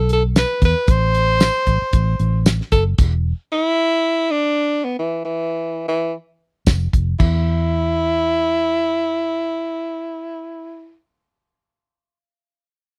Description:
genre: straight-eighth soul blues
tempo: 114 BPM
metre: 4/4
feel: swing 56% on 16ths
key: unclear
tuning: A4 = 440 Hz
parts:
  - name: breathy tenor saxophone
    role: melody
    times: 0.0-11.0 s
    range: E3 to C5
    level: -21 LUFS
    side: equal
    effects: none
  - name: vintage muted fingered electric bass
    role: bass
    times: 0.0-3.3, 6.7-11.0 s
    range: E1 to E2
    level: -21 LUFS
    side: equal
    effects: none
  - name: damped 70s drum kit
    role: drums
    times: 0.1-3.1, 6.7-7.3 s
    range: crash cymbal, hi-hat, kick drum, snare drum, tambourine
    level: -18 LUFS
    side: equal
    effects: none
room: little or no reverb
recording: dry, close 1970s-style studio recording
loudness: -19 LUFS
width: mono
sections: 0.0-7.2 A section; 7.2-11.4 B section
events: stop 3.0-6.7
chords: 0.0 N.C.; 0.9 Am; 3.0 E5; 6.7 N.C.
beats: 0.35 | 0.88 1.41 1.93 2.46 | 2.98 3.51 4.04 4.57 | 5.09 5.62 6.14 6.67 | 7.20 7.72 8.25 8.78 | 9.30 9.83 10.35 10.88

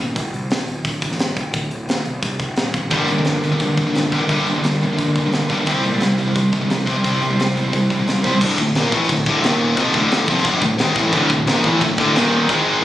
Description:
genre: heavy metal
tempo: 175 BPM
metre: 4/4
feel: straight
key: D minor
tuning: A4 = 442 Hz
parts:
  - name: fuzz picked electric bass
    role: bass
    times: 0.0-12.8 s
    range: D1 to C3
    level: -25 LUFS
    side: equal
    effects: overdrive
  - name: tight metal drum kit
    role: drums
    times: 0.2-12.6 s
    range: crash cymbal, hi-hat, kick drum, snare drum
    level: -22 LUFS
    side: equal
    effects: none
  - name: fuzz guitar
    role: riff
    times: 2.9-12.8 s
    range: D2 to C5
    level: -22 LUFS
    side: right 2 dB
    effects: distortion
  - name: heavy high-gain guitar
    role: riff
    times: 2.9-8.4, 11.1-12.8 s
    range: D2 to C4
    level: -23 LUFS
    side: right 6 dB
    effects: distortion
  - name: high-gain distorted guitar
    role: riff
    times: 2.9-12.8 s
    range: D2 to C4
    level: -18 LUFS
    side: left 3 dB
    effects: distortion
room: light reverb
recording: recorded on a phone in the room, studio reverb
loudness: -16 LUFS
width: side -13 dB against mid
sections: 0.0-8.4 A section; 8.4-12.8 B section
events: none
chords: 0.2 D5; 2.2 Csus2; 2.6 N.C.; 2.9 Gm; 5.7 C; 8.4 Dm; 9.4 Eb5; 9.8 Dm; 12.2 Eb5; 12.5 G#5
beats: | 0.16 0.51 0.85 1.19 | 1.54 1.88 2.23 2.57 | 2.92 3.26 3.60 3.95 | 4.29 4.64 4.98 5.33 | 5.67 6.01 6.36 6.70 | 7.04 7.38 7.73 8.07 | 8.41 8.75 9.09 9.43 | 9.77 10.11 10.45 10.79 | 11.13 11.47 11.81 12.15 | 12.49 12.83

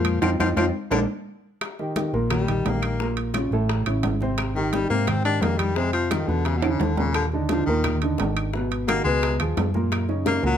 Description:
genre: Afro-Cuban jazz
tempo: 173 BPM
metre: 4/4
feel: straight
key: Eb major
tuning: A4 = 440 Hz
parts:
  - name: breathy baritone saxophone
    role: second line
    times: 0.0-10.6 s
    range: B2 to D4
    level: -26 LUFS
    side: left 4 dB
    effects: none
  - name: warm baby grand piano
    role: accompaniment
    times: 0.0-10.6 s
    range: A2 to C5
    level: -26 LUFS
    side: right 1 dB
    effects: none
  - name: hollow-body short-scale fingered electric bass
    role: bass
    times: 0.0-10.6 s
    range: Ab1 to Ab2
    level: -26 LUFS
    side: right 1 dB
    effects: none
  - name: timbales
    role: percussion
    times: 0.0-10.4 s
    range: none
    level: -30 LUFS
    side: right 8 dB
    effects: none
  - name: bongos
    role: percussion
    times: 0.1-10.6 s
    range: none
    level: -34 LUFS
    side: left 7 dB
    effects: none
  - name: claves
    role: percussion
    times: 0.1-10.1 s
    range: none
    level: -36 LUFS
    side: left 8 dB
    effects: none
  - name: congas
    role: percussion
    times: 0.1-10.6 s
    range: none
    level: -31 LUFS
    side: left 3 dB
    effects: none
room: light reverb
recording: dark, warm production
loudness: -21 LUFS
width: side -9 dB against mid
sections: 0.0-1.6 A section; 1.6-10.6 A section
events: baritone saxophone solo 0.0-10.6; band accent 0.2-1.6; drum fill 1.1-1.6, 6.6-7.2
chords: 0.2 F5; 0.9 Bb7; 1.6 Eb; 3.0 Bbm; 3.7 A; 4.4 Abmaj7; 5.8 F5; 6.5 E5; 7.2 Eb5; 8.5 Abm7; 9.2 Db7; 9.9 Gb6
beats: | 0.23 0.57 0.92 1.27 | 1.61 1.96 2.31 2.65 | 3.00 3.35 3.69 4.04 | 4.38 4.73 5.08 5.42 | 5.77 6.12 6.46 6.81 | 7.15 7.50 7.85 8.19 | 8.54 8.88 9.23 9.58 | 9.92 10.27

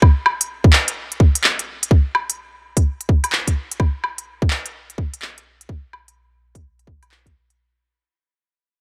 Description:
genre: future garage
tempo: 127 BPM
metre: 4/4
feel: swing 64% on 16ths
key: none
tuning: none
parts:
  - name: electronic kick drum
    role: drums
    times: 0.0-7.3 s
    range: none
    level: -16 LUFS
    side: equal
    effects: none
  - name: organic electronic drum kit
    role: drums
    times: 0.0-7.6 s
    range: handclaps, hi-hat, woodblock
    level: -21 LUFS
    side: equal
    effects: overdrive
room: little or no reverb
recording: faint mains hum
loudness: -19 LUFS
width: mono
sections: 0.0-7.6 A section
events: fade-out 0.0-7.6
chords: none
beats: | 0.02 0.49 0.96 1.44 | 1.91 2.38 2.85 3.32 | 3.80 4.27 4.74 5.21 | 5.69 6.16 6.63 7.10

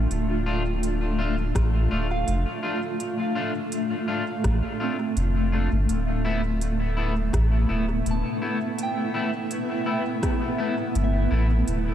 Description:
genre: ambient dub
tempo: 83 BPM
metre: 4/4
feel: swing 54% on 16ths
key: D dorian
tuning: A4 = 440 Hz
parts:
  - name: granular cloud pad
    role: sustained chords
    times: 0.0-11.9 s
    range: A3 to A5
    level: -27 LUFS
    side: equal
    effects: built-in reverb, wide subtle chorus
  - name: soft synth bell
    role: arpeggios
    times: 0.0-11.9 s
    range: C4 to A5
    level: -37 LUFS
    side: right 3 dB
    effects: chorus, phaser, low-pass filter, diffuse ambient delay
  - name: soft dub sub bass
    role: bass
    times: 0.0-11.9 s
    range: D1 to A1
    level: -24 LUFS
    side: equal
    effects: none
  - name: organic electronic drum kit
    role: drums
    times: 0.1-11.8 s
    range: hi-hat, rim click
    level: -37 LUFS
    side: equal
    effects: dub echo
  - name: clean electric guitar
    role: stabs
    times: 0.5-11.5 s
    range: A3 to F4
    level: -31 LUFS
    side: left 3 dB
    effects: lush chorus, dub echo
  - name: electronic kick drum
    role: drums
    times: 1.6-10.4 s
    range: none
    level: -28 LUFS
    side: equal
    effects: none
room: light reverb, digital ambience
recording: none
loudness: -22 LUFS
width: side -10 dB against mid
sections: 0.0-11.9 A section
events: none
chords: 0.0 Dm; 5.9 Asus2/D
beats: | 0.11 0.83 1.55 2.28 | 3.00 3.72 4.45 5.17 | 5.89 6.61 7.34 8.06 | 8.78 9.51 10.23 10.95 | 11.67

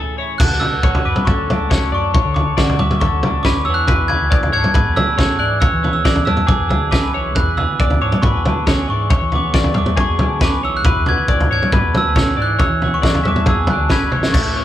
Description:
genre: math rock and midwest emo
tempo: 138 BPM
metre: 4/4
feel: straight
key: unclear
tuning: A4 = 439 Hz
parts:
  - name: twelve-string electric guitar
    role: accompaniment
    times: 0.0-14.6 s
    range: A2 to G#4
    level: -26 LUFS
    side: right 3 dB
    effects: none
  - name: twelve-string electric guitar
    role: arpeggios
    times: 0.0-14.6 s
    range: C#4 to E5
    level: -24 LUFS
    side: left 7 dB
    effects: spring reverb
  - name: glockenspiel with soft plastic mallets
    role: melody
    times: 0.4-14.6 s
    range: C#6 to G#6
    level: -20 LUFS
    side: right 1 dB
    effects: none
  - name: overdriven fingered electric bass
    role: bass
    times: 0.4-14.6 s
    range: F#1 to E3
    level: -22 LUFS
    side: equal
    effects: none
  - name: loose indie drum kit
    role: drums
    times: 0.4-14.4 s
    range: crash cymbal, kick drum, snare drum, toms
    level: -16 LUFS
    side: equal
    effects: none
room: light reverb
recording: band playing live in one room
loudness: -14 LUFS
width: side -12 dB against mid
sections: 0.4-14.3 A section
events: break 0.0-0.4; drum fill 14.1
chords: 0.4 Dmaj7; 3.7 E7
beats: | 0.39 0.83 1.26 1.70 | 2.13 2.57 3.00 3.44 | 3.88 4.31 4.75 5.18 | 5.62 6.05 6.49 6.92 | 7.36 7.80 8.23 8.67 | 9.10 9.54 9.97 10.41 | 10.85 11.28 11.72 12.16 | 12.59 13.03 13.47 13.90 | 14.34

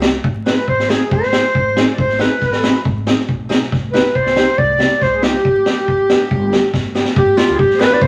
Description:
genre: klezmer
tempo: 139 BPM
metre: 4/4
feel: straight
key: G phrygian dominant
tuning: A4 = 440 Hz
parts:
  - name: warm clarinet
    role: melody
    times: 0.0-8.1 s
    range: F4 to D5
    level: -18 LUFS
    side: equal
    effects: none
  - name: nylon-string guitar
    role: accompaniment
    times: 0.0-8.0 s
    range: B3 to Ab4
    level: -22 LUFS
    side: equal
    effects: none
  - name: upright bass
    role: bass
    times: 0.0-8.1 s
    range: G1 to G2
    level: -28 LUFS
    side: equal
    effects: none
  - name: street-band drum kit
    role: drums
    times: 0.0-8.1 s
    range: kick drum, snare drum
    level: -20 LUFS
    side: equal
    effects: none
  - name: accordion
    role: second line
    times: 0.5-8.1 s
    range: G4 to D5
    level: -24 LUFS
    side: equal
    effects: none
room: moderate large studio reverb, RT60 0.9 s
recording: vinyl crackle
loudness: -15 LUFS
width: mono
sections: 0.0-7.2 A section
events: speeding up 0.0-8.1; drum fill 6.7-7.2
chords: 0.2 Ab; 3.7 Cm; 5.4 G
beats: | 0.23 0.67 1.10 1.54 | 1.98 2.41 2.85 3.28 | 3.72 4.15 4.58 5.01 | 5.45 5.88 6.30 6.73 | 7.16 7.59 8.01

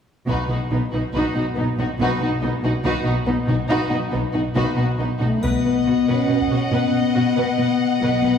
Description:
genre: cinematic, epic orchestral film score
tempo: 93 BPM (dotted quarters)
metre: 12/8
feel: straight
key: unclear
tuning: A4 = 438 Hz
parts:
  - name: rich symphonic violin section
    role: melody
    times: 0.3-8.4 s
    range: D#4 to F#5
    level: -29 LUFS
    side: left 3 dB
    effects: none
  - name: rich chamber violin section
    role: second line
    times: 0.3-8.4 s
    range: B3 to D#5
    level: -27 LUFS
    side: equal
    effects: none
  - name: rich symphonic viola section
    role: accompaniment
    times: 0.3-8.3 s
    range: D#4 to B4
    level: -27 LUFS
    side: right 1 dB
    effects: none
  - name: clear studio cello section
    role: bass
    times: 0.3-8.3 s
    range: B2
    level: -24 LUFS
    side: equal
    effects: none
  - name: rich symphonic double bass section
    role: bass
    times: 0.3-8.2 s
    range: B1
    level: -26 LUFS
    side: right 1 dB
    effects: none
  - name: taiko ensemble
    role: drums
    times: 0.3-1.1, 5.4-6.6 s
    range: none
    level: -32 LUFS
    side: equal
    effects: none
  - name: dark French horn section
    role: sustained chords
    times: 5.2-8.4 s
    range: A3 to C#4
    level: -19 LUFS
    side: left 4 dB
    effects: none
  - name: triangle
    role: percussion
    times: 5.4-6.3 s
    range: none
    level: -45 LUFS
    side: left 3 dB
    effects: none
room: wet scoring stage reverb, RT60 1.9 s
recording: heard from further back in the room, studio ambience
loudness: -18 LUFS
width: side -7 dB against mid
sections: 0.3-5.4 A section; 5.4-8.4 B section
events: none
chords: 0.3 B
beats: | 0.28 0.92 1.56 2.20 | 2.84 3.48 4.12 4.78 | 5.43 6.09 6.73 7.38 | 8.02

